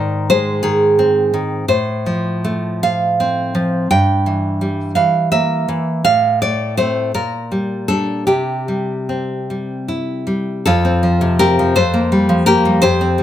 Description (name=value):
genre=romantic piece for solo classical guitar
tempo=49-59 BPM (dotted quarters)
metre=6/8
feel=rubato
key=F major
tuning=A4 = 438 Hz
part: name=nylon-string guitar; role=solo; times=0.0-13.2 s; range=F2 to G5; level=-14 LUFS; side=equal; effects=none
room=light reverb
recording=close, detailed microphones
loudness=-14 LUFS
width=side -11 dB against mid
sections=0.0-10.7 A section; 10.7-13.2 B section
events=none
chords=0.0 Ab; 1.7 F/A; 3.9 Edim/G; 6.1 Amadd11; 7.1 Gm/Bb; 8.3 C; 10.7 F